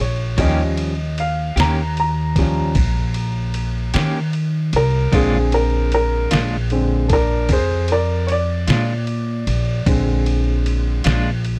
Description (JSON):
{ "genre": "slow blues", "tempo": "51 BPM (dotted quarters)", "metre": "12/8", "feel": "straight", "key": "Bb mixolydian", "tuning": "A4 = 440 Hz", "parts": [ { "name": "clear upright piano", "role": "accompaniment", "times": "0.0-11.0 s", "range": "D3 to Bb5", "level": "-24 LUFS", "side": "equal", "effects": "none" }, { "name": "upright bass", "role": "bass", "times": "0.0-11.6 s", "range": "Bb1 to Eb3", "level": "-22 LUFS", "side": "equal", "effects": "none" }, { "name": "clean electric guitar", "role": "accompaniment", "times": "0.4-11.3 s", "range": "Bb2 to G4", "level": "-24 LUFS", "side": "equal", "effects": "tremolo" }, { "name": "trip hop sampler-style drum kit", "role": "drums", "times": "0.4-11.6 s", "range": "kick drum, ride cymbal, snare drum", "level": "-26 LUFS", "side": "equal", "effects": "overdrive" } ], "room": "little or no reverb", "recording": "dry, close 1970s-style studio recording", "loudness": "-19 LUFS", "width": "mono", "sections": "0.0-11.6 A section", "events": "upright piano solo 0.0-11.6", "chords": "0.4 Eb7; 5.1 Bb7", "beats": "| 0.39 1.57 2.76 3.94 | 5.13 6.32 7.50 8.69 | 9.88 11.06" }